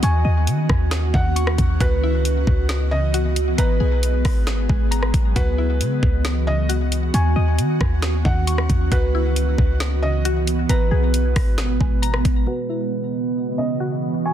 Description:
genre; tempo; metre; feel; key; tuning
hip hop, atmospheric cloud-rap; 135 BPM; 4/4; half-time; C# dorian; A4 = 441 Hz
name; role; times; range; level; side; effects
felt-muted upright piano; melody; 0.0-14.3 s; B4 to G#5; -28 LUFS; equal; low-pass filter, ping-pong delay
ethereal airy pad; sustained chords; 0.0-14.3 s; B2 to D#5; -25 LUFS; right 2 dB; ensemble chorus, built-in reverb, sidechain pumping, low-pass filter
mallet-like synth pluck; arpeggios; 0.0-14.3 s; C#3 to C#6; -30 LUFS; left 3 dB; chorus, low-pass filter, ping-pong delay
clean 808-style bass; bass; 0.0-12.5 s; G#1 to D#3; -19 LUFS; equal; none
smooth R&B drum kit; drums; 0.0-12.4 s; hi-hat, kick drum, rim click, snare drum; -22 LUFS; equal; none
room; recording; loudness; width
digital ambience; dense, heavily limited modern master; -17 LUFS; side -10 dB against mid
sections
0.0-12.5 A section; 12.5-14.3 B section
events
none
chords
0.0 D#m7; 1.8 C#m11; 3.6 G#m9; 5.4 C#m11; 7.1 D#m7; 8.9 C#m11; 10.7 G#m9; 12.5 C#m11

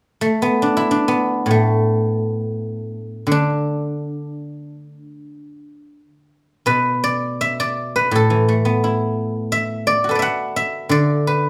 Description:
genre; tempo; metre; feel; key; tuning
chinese traditional, Chinese solo plucked strings; free time; none; none; D gong mode; A4 = 441 Hz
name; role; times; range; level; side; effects
guzheng; solo; 0.2-11.5 s; A2 to F#5; -20 LUFS; equal; none
room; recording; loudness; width
moderate large studio reverb, RT60 0.9 s; band playing live in one room; -19 LUFS; mono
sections
0.0-6.7 A section; 6.7-11.5 B section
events
none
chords
none

